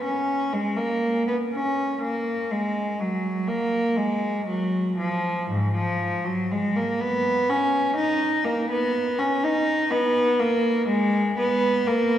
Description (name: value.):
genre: classical, baroque-style suite movement for unaccompanied cello.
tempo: 61 BPM.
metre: 4/4.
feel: rubato.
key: unclear.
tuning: A4 = 438 Hz.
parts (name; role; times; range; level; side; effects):
rich cello; solo; 0.0-12.2 s; G#2 to D#4; -21 LUFS; equal; none.
room: wet church reverb, RT60 3.0 s.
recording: heard from further back in the room.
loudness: -21 LUFS.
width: side -11 dB against mid.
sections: 0.0-12.2 A section.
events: none.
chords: none.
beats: 0.52 | 1.51 2.50 3.48 4.47 | 5.50 6.51 7.49 8.45 | 9.43 10.39 11.37.